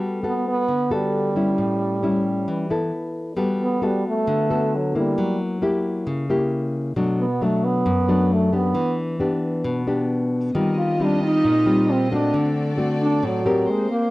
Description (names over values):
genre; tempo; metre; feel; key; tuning
bossa nova; 134 BPM; 4/4; straight; G major; A4 = 440 Hz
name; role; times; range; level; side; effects
nylon-string guitar; accompaniment; 0.0-14.1 s; F#2 to Bb4; -21 LUFS; left 1 dB; none
warm French horn; melody; 0.3-14.1 s; F#3 to F4; -22 LUFS; right 1 dB; none
warm chamber string section; sustained chords; 10.5-14.1 s; Bb3 to Eb5; -31 LUFS; right 1 dB; none
room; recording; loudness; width
light reverb; dry, close 1970s-style studio recording; -19 LUFS; side -19 dB against mid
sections
0.0-3.4 A section; 3.4-14.1 B section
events
French horn solo 3.4-14.1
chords
0.0 Gmaj9; 1.6 A7; 2.9 B7sus4; 3.4 Gmaj9; 5.2 F#7b9; 7.0 Bm7; 8.8 Em7; 10.5 Eb69; 12.3 D7; 13.7 Abmaj9